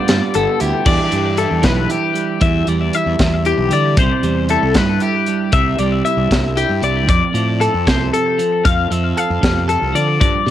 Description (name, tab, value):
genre	math rock and midwest emo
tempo	77 BPM (dotted quarters)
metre	6/8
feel	straight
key	F lydian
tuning	A4 = 438 Hz
part	clean electric guitar	accompaniment	0.0-10.5 s	F2 to A4	-20 LUFS	right 7 dB	warbly pitch drift, cassette tape
part	twelve-string electric guitar	arpeggios	0.0-10.5 s	G4 to F5	-18 LUFS	left 7 dB	wide subtle chorus, cassette tape, tape echo
part	fuzz fingered electric bass	bass	0.1-10.5 s	G1 to D3	-19 LUFS	equal	overdrive
part	crisp fusion drum kit	drums	0.1-10.5 s	crash cymbal, hi-hat, kick drum, snare drum	-18 LUFS	equal	cassette tape
room	light reverb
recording	home recording on cassette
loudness	-13 LUFS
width	side -11 dB against mid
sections	0.9-10.5 A section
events	none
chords	0.0 G13; 0.9 Em7; 4.0 C; 7.1 F6